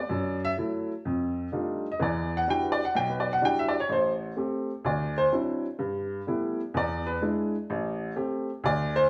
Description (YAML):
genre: jazz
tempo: 127 BPM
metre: 4/4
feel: swing 66% on 8ths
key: unclear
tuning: A4 = 443 Hz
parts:
  - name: warm baby grand piano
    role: solo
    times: 0.0-9.1 s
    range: A1 to G5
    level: -28 LUFS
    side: equal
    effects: none
room: wet stone room reverb, RT60 1.0 s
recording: band playing live in one room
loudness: -29 LUFS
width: mono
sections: 0.0-9.1 A section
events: grand piano solo 0.0-9.1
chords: 0.1 F#m7; 1.1 F13; 2.0 Em9; 3.9 Am7; 4.8 D9; 5.8 G69; 6.7 E7; 7.7 Am7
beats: | 0.10 0.57 1.05 1.52 | 2.00 2.47 2.95 3.42 | 3.90 4.37 4.84 5.32 | 5.79 6.26 6.74 7.21 | 7.68 8.16 8.63